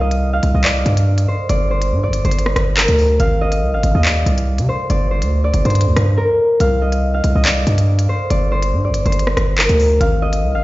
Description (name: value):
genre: hip hop, drill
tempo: 141 BPM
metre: 4/4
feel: half-time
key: G phrygian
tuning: A4 = 440 Hz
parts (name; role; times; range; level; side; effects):
- concert harp; melody; 0.0-10.6 s; Bb4 to F5; -19 LUFS; equal; none
- hard-hitting 808-style bass; bass; 0.0-10.6 s; G1 to C3; -15 LUFS; equal; none
- drill drum kit; drums; 0.1-10.4 s; handclaps, hi-hat, rim click; -20 LUFS; equal; none
room: digital ambience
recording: played on a big sound system in a bare room, stone room reverb, nothing above 7.6 kHz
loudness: -13 LUFS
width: side -18 dB against mid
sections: 0.0-10.6 A section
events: silent gap 6.2-6.6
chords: 0.0 C5; 1.5 Gm; 3.2 Ab; 4.9 Gm; 6.6 C5; 8.3 Gm; 10.0 Ab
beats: 0.22 0.65 1.07 | 1.50 1.92 2.35 2.77 | 3.20 3.62 4.05 4.47 | 4.90 5.33 5.75 6.18 | 6.60 7.03 7.45 7.88 | 8.30 8.73 9.16 9.58 | 10.01 10.43